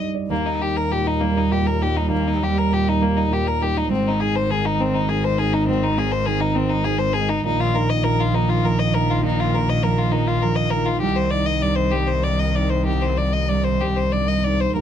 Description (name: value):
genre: neoclassical piano and strings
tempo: 101 BPM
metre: 3/4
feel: rubato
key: Eb major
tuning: A4 = 439 Hz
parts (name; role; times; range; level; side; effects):
- rich violin; melody; 0.0-14.8 s; Bb3 to Eb5; -22 LUFS; left 4 dB; none
- felt-muted upright piano; accompaniment; 0.0-14.8 s; C2 to Eb5; -24 LUFS; right 4 dB; none
- rich cello; second line; 0.3-14.8 s; Eb3 to G3; -28 LUFS; right 7 dB; none
- warm double bass; bass; 0.3-14.8 s; Ab1 to Eb2; -23 LUFS; left 1 dB; none
room: little or no reverb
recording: close, detailed microphones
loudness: -18 LUFS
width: side -9 dB against mid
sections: 0.3-14.8 A section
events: none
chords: 0.3 Eb; 3.9 Ab; 7.5 Bbsus4; 11.0 Cmadd9